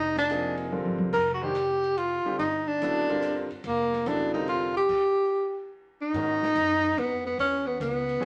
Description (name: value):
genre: modal jazz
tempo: 144 BPM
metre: 3/4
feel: swing 67% on 8ths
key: unclear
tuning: A4 = 443 Hz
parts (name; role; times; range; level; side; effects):
- breathy tenor saxophone; melody; 0.0-8.2 s; Bb3 to Bb4; -27 LUFS; equal; none
- upright bass; bass; 0.0-8.2 s; F1 to G#2; -42 LUFS; equal; none
- open jazz drum kit; drums; 0.2-8.2 s; crash cymbal, hi-hat, kick drum, ride cymbal, snare drum, toms; -41 LUFS; equal; none
- clear grand piano; accompaniment; 0.3-8.2 s; C3 to C5; -35 LUFS; equal; none
room: wet studio reverb, RT60 0.8 s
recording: none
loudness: -27 LUFS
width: mono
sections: 0.0-6.1 A section; 6.1-8.2 B section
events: drum fill 0.7-1.1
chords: 0.0 Fm69; 1.1 Gm/F; 4.9 N.C.; 6.1 G#m11